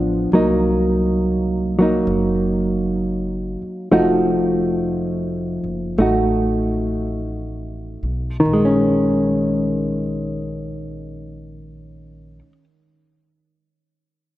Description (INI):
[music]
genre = jazz ballad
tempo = 44-70 BPM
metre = 4/4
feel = swing 68% on 8ths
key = Bb minor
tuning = A4 = 440 Hz
[part]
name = hollow-body jazz guitar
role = accompaniment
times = 0.0-12.6 s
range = Eb3 to Gb4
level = -18 LUFS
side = equal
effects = none
[part]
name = upright bass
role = bass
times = 0.0-12.4 s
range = F1 to C2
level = -27 LUFS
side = equal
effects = none
[sound]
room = moderate lush hall reverb, RT60 2.9 s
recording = rough home demo mix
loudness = -17 LUFS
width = side -15 dB against mid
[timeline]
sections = 0.3-8.5 A section; 8.5-13.9 B section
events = slowing down 0.3-8.5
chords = 0.3 Cm7b5; 3.9 F7b9; 8.5 Bbm7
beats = | 0.32 1.18 2.06 2.97 | 3.91 4.91 5.97 7.15 | 8.46 9.83 11.19 12.54